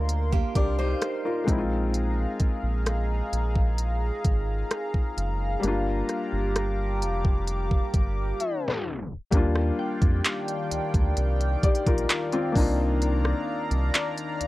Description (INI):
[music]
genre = contemporary R&B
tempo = 65 BPM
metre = 4/4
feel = straight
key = Eb major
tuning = A4 = 438 Hz
[part]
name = felt-muted upright piano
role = accompaniment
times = 0.0-14.5 s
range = G3 to G5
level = -30 LUFS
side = left 3 dB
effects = none
[part]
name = chorused pulse-width pad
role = sustained chords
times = 0.0-14.5 s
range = Eb3 to D6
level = -32 LUFS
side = equal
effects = sidechain pumping
[part]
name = round analog bass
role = bass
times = 0.0-14.5 s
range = F1 to F2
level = -27 LUFS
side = equal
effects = none
[part]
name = smooth R&B drum kit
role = drums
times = 0.1-14.5 s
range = handclaps, hi-hat, kick drum, rim click, snare drum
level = -24 LUFS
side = equal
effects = none
[part]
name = picked steel-string acoustic guitar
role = arpeggios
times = 0.3-1.4 s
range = Bb3 to C5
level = -34 LUFS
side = right 9 dB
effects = analog delay
[part]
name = glassy wavetable pluck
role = texture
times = 9.8-11.2 s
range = G5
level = -41 LUFS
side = equal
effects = chorus, analog delay
[sound]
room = little or no reverb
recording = tape stop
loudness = -23 LUFS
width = side -17 dB against mid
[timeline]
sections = 0.0-9.3 A section; 9.3-14.5 B section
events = felt piano fill 7.9-9.3; drum fill 8.4-9.3; tape stop 8.4-9.3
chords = 0.0 Cm11; 1.5 Bb7sus4; 5.6 Gm7; 9.3 Ebmaj9; 12.6 Cm11